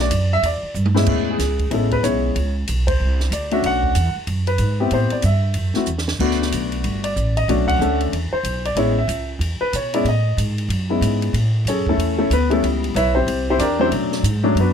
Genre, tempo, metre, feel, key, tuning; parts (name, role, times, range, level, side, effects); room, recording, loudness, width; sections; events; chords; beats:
jazz piano trio; 187 BPM; 4/4; swing 63% on 8ths; A major; A4 = 440 Hz
warm baby grand piano; melody; 0.0-14.7 s; A2 to F#5; -20 LUFS; left 2 dB
upright bass; bass; 0.0-14.7 s; G1 to B2; -20 LUFS; right 1 dB
compact cocktail drum kit; drums; 0.1-14.7 s; crash cymbal, hi-hat, kick drum, ride cymbal, snare drum, toms; -28 LUFS; right 2 dB
little or no reverb; close, detailed microphones; -17 LUFS; side -8 dB against mid
0.0-1.1 A section; 1.1-11.3 B section; 11.3-14.7 C section
drum fill 0.8-1.1, 5.9-6.2; band accent 2.8, 7.6; grand piano solo 11.3-14.7
0.4 Em7; 1.1 Amaj7; 2.4 Bsus2; 3.0 Csus2; 3.6 Bm9; 4.9 Am9; 5.6 A5 (rootless); 6.2 Gmaj7; 7.5 Bm7; 8.1 E5; 8.8 Amaj7; 11.3 A; 12.6 C#m7b5; 13.3 C9; 13.9 Bm9
0.11 0.43 0.75 | 1.07 1.39 1.71 2.03 | 2.35 2.67 2.99 3.31 | 3.63 3.95 4.27 4.59 | 4.91 5.23 5.55 5.87 | 6.20 6.52 6.84 7.16 | 7.48 7.80 8.12 8.44 | 8.77 9.09 9.41 9.73 | 10.05 10.38 10.70 11.02 | 11.34 11.66 11.99 12.31 | 12.63 12.95 13.27 13.60 | 13.92 14.24 14.56